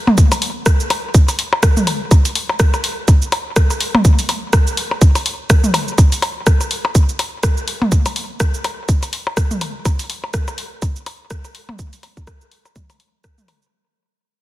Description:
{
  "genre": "techno",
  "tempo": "124 BPM",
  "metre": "4/4",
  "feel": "swing 58% on 16ths",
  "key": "none",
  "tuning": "none",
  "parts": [
    { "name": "electronic toms and percussion blips", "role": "percussion", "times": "0.1-13.6 s", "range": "none", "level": "-20 LUFS", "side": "left 1 dB", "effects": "studio reverb, tape echo" },
    { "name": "electronic kick drum", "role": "drums", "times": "0.2-13.4 s", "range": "none", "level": "-12 LUFS", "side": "equal", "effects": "studio reverb" },
    { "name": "garage drum kit", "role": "drums", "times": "0.2-13.7 s", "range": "cabasa, hi-hat, rim click", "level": "-21 LUFS", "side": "equal", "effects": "studio reverb, soft clipping on snare" }
  ],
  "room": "little or no reverb",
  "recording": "dense, heavily limited modern master",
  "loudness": "-14 LUFS",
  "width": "side -16 dB against mid",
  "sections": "0.0-13.7 A section",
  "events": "drop 0.0-13.7; fade-out 6.0-13.7",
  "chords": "none"
}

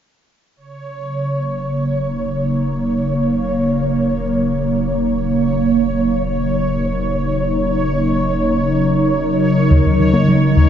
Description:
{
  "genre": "ambient, sequencer-driven space music",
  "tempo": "free time",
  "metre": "none",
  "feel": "none",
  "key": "Eb minor",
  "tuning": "A4 = 442 Hz",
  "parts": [
    { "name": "phased analog pad", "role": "sustained chords", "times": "0.6-10.7 s", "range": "Db3 to Bb4", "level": "-16 LUFS", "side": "equal", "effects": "phaser, chorus" },
    { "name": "warm sub bass", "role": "bass", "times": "0.6-10.7 s", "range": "Eb1", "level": "-28 LUFS", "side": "left 1 dB", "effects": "none" },
    { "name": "bubbling stepped-filter texture", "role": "texture", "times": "0.6-10.7 s", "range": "Db5", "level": "-22 LUFS", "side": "equal", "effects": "chorus, built-in reverb" },
    { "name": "tight sequenced synth", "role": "riff", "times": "9.7-10.7 s", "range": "Eb2 to Bb3", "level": "-13 LUFS", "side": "equal", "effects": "chorus, phaser, analog delay" }
  ],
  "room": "wet huge ambient reverb, RT60 7.8 s",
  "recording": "cassette tape, nothing above 7.5 kHz",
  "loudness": "-15 LUFS",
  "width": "side -9 dB against mid",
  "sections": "0.6-10.7 A section",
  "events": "fade-in on sub bass 0.6-10.7",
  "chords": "0.6 Ebm7"
}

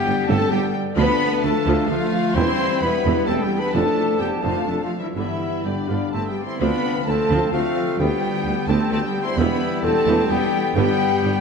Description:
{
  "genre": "cinematic, heroic adventure film score",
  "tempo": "130 BPM",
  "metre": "3/4",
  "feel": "straight",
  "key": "D dorian",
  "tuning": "A4 = 441 Hz",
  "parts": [
    { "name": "warm symphonic violin section", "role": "melody", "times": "0.0-11.4 s", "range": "D5 to C6", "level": "-32 LUFS", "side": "left 5 dB", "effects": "none" },
    { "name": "clear clarinet", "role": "second line", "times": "0.0-11.4 s", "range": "G3 to E4", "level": "-30 LUFS", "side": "left 3 dB", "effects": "none" },
    { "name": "rich symphonic violin section", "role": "second line", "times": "0.0-11.4 s", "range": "D5 to C6", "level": "-34 LUFS", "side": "left 1 dB", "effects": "none" },
    { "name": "small flute group", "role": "second line", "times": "0.0-11.4 s", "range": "D5 to C6", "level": "-32 LUFS", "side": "left 2 dB", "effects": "none" },
    { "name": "warm French horn section", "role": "sustained chords", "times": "0.0-11.4 s", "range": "D4 to C5", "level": "-24 LUFS", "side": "left 4 dB", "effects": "none" },
    { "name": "concert harp", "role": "arpeggios", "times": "0.0-11.4 s", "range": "G2 to C6", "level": "-31 LUFS", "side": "left 9 dB", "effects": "none" },
    { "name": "warm trumpet", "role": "stabs", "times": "0.0-11.4 s", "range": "A3 to C5", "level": "-30 LUFS", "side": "right 2 dB", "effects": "none" },
    { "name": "mellow tuba", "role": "bass", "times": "0.0-11.3 s", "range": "E1 to D2", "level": "-27 LUFS", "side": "right 4 dB", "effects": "none" },
    { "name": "rich symphonic cello section", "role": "bass", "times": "0.0-11.4 s", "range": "D3 to C4", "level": "-27 LUFS", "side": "right 4 dB", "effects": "none" },
    { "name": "warm chamber viola section", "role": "accompaniment", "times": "0.1-11.3 s", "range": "D3 to G4", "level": "-29 LUFS", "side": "right 2 dB", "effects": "none" },
    { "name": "clear symphonic double bass section", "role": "bass", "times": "0.1-11.3 s", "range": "D2 to G2", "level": "-27 LUFS", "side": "right 4 dB", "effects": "none" },
    { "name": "warm trombone section", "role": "sustained chords", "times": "1.0-11.4 s", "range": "C3 to D4", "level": "-32 LUFS", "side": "right 2 dB", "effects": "none" },
    { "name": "clear oboe", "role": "second line", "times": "5.6-11.4 s", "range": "D5 to G5", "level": "-35 LUFS", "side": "right 1 dB", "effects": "none" }
  ],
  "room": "wet scoring stage reverb, RT60 1.9 s",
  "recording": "none",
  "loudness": "-18 LUFS",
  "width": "side -5 dB against mid",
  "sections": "0.0-6.6 A section; 6.6-11.4 B section",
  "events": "none",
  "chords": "0.0 G; 1.0 Dm; 2.4 Em; 3.7 Dm/F; 5.2 G; 6.6 Dm7; 8.0 G/D; 9.4 Em; 10.8 G"
}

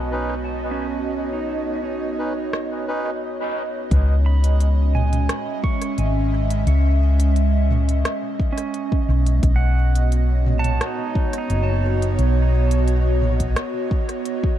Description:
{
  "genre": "ambient dub",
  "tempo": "87 BPM",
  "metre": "4/4",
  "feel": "straight",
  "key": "C# minor",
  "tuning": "A4 = 440 Hz",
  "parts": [
    { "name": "airy breathy pad", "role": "sustained chords", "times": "0.0-14.6 s", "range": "G#3 to E5", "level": "-25 LUFS", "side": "right 2 dB", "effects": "chorus" },
    { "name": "pedal steel guitar", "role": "arpeggios", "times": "0.0-13.5 s", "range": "C#4 to C#6", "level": "-30 LUFS", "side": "right 5 dB", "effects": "tape echo" },
    { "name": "hollow-body short-scale fingered electric bass", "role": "bass", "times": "0.0-13.5 s", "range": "F#1 to C#2", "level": "-18 LUFS", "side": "equal", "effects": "tube saturation" },
    { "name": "melodica", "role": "stabs", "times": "0.1-3.1 s", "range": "C#4 to B4", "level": "-30 LUFS", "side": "equal", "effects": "low-pass filter, dub echo" },
    { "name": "organic electronic drum kit", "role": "drums", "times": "2.5-14.4 s", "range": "hi-hat, rim click, toms", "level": "-28 LUFS", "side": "right 2 dB", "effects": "dub echo" },
    { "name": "electronic kick drum", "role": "drums", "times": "3.9-14.6 s", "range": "none", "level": "-21 LUFS", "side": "equal", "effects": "none" }
  ],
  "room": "little or no reverb",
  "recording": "dark, warm production",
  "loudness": "-18 LUFS",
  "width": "side -12 dB against mid",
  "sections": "0.0-3.9 A section; 3.9-14.6 B section",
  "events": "filter sweep on pedal steel guitar 0.0-3.9",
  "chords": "0.0 Badd9; 3.9 C#m7; 9.4 Badd9"
}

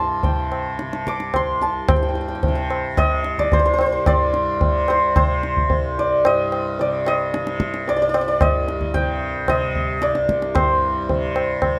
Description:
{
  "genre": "indian classical, Hindustani",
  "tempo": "111 BPM",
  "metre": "4/4",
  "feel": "straight",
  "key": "C raga shivaranjani",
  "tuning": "A4 = 440 Hz",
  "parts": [
    { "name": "santur", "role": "melody", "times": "0.0-11.8 s", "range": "C5 to D6", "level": "-23 LUFS", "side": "equal", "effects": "none" },
    { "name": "tanpura", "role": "drone", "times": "0.0-11.8 s", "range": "C2 to C3", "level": "-30 LUFS", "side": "equal", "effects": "none" },
    { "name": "tabla", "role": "percussion", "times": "0.2-11.8 s", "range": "none", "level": "-24 LUFS", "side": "equal", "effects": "none" }
  ],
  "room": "moderate booth ambience, RT60 0.3 s",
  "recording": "none",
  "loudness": "-20 LUFS",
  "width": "mono",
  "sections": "0.0-1.9 A section; 1.9-11.8 B section",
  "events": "speeding up 0.0-11.8",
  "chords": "none"
}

